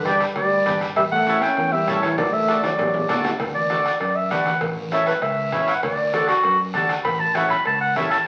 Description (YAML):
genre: latin, cumbia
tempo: 197 BPM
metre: 4/4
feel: straight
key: D major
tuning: A4 = 440 Hz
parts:
  - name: warm clarinet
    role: melody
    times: 0.0-8.3 s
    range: F#4 to B5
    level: -23 LUFS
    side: equal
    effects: none
  - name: bright trombone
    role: second line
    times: 0.0-3.2 s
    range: E3 to C#4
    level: -29 LUFS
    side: equal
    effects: none
  - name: fingered electric bass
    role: bass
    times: 0.0-8.2 s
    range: G1 to F#2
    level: -35 LUFS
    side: equal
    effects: none
  - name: accordion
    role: accompaniment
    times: 0.1-8.2 s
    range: C#4 to B4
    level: -28 LUFS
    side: equal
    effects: none
  - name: bombo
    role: percussion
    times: 0.1-8.3 s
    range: none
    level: -34 LUFS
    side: equal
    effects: none
  - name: congas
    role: percussion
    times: 0.1-8.1 s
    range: none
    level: -36 LUFS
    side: equal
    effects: none
  - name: cowbell and timbales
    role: percussion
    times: 0.1-8.1 s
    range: none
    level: -34 LUFS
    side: equal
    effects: none
  - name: guiro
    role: percussion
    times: 0.1-8.3 s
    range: none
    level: -39 LUFS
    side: equal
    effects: none
room: wet large studio reverb, RT60 1.2 s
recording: very old 78 rpm record, vinyl crackle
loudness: -21 LUFS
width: mono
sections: 0.0-3.4 A section; 3.4-8.3 B section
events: drum fill 2.2-3.4; clarinet solo 3.4-8.3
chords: 0.0 G; 1.0 A7; 2.2 D; 4.6 A; 5.8 D; 7.0 A